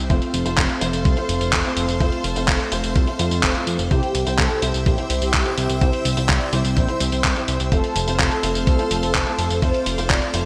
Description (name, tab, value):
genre	italo disco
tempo	126 BPM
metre	4/4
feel	straight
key	F major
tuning	A4 = 436 Hz
part	string machine, full ensemble	sustained chords	0.0-10.5 s	A4 to E6	-30 LUFS	equal	ensemble chorus
part	warm grand piano	stabs	0.0-10.5 s	C3 to F5	-30 LUFS	equal	subtle chorus
part	fat analog bass	bass	0.0-10.4 s	F1 to F2	-26 LUFS	equal	tube saturation
part	dusty soul sampler-style drum kit	drums	0.1-10.4 s	handclaps, hi-hat, tambourine	-26 LUFS	equal	small room ambience, gated reverb
part	electronic kick drum	drums	0.1-10.2 s	none	-23 LUFS	equal	small room ambience
part	mellow synth brass	melody	3.9-10.5 s	G4 to D5	-29 LUFS	equal	chorus, phaser, digital delay
room	moderate lush hall reverb, RT60 1.7 s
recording	bright 1980s-style digital production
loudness	-20 LUFS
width	mono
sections	0.0-10.5 A section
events	none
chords	0.1 F; 3.9 C; 7.7 F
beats	| 0.10 0.58 1.05 1.53 | 2.00 2.48 2.96 3.43 | 3.91 4.38 4.86 5.34 | 5.81 6.29 6.77 7.24 | 7.72 8.20 8.67 9.15 | 9.62 10.10